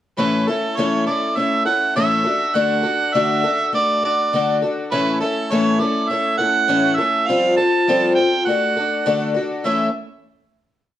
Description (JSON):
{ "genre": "rock", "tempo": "101 BPM", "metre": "4/4", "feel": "straight", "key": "A mixolydian", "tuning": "A4 = 443 Hz", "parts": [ { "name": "mellow harmonica", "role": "melody", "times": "0.2-9.9 s", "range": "A4 to A5", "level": "-19 LUFS", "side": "right 3 dB", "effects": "slapback echo" }, { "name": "picked twelve-string acoustic guitar", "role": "accompaniment", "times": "0.2-9.9 s", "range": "A2 to A4", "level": "-19 LUFS", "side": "left 2 dB", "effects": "none" } ], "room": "moderate large studio reverb, RT60 1.0 s", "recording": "dark, warm production", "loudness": "-16 LUFS", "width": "side -12 dB against mid", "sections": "0.2-9.7 verse; 9.7-11.0 final chord", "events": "none", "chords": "0.2 A; 2.2 D; 4.9 A; 7.3 Fadd9; 8.5 D; 9.7 A" }